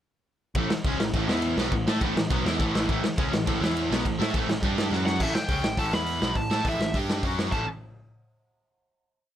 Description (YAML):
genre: punk rock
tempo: 207 BPM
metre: 4/4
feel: straight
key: A mixolydian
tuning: A4 = 440 Hz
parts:
  - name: growling picked electric bass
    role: bass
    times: 0.5-7.7 s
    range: A1 to A2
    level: -31 LUFS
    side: equal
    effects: overdrive
  - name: raw garage drum kit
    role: drums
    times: 0.5-7.6 s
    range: crash cymbal, hi-hat, kick drum, snare drum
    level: -27 LUFS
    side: equal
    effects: none
  - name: distorted electric guitar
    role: riff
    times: 0.6-7.7 s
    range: A2 to A4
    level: -29 LUFS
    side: right 1 dB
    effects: distortion
  - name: fuzz guitar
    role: riff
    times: 0.6-5.2 s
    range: A2 to A4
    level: -32 LUFS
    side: left 1 dB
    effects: distortion
  - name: high-gain lead guitar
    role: melody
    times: 5.1-7.7 s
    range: E5 to B5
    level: -30 LUFS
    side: equal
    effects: distortion
room: little or no reverb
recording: none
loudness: -23 LUFS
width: side -11 dB against mid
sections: 0.6-5.2 riff; 5.2-7.5 outro; 7.5-8.7 final chord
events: drum fill 4.9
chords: 0.6 A; 1.3 E5; 1.6 A; 3.6 E5; 3.9 A5; 4.6 G5; 4.9 F#5; 5.2 A; 5.9 E5; 6.2 A5; 6.9 G5; 7.2 F#5; 7.5 A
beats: | 0.56 0.85 1.15 1.44 | 1.73 2.02 2.31 2.60 | 2.89 3.18 3.47 3.76 | 4.05 4.34 4.63 4.92 | 5.21 5.50 5.79 6.08 | 6.36 6.65 6.94 7.23 | 7.53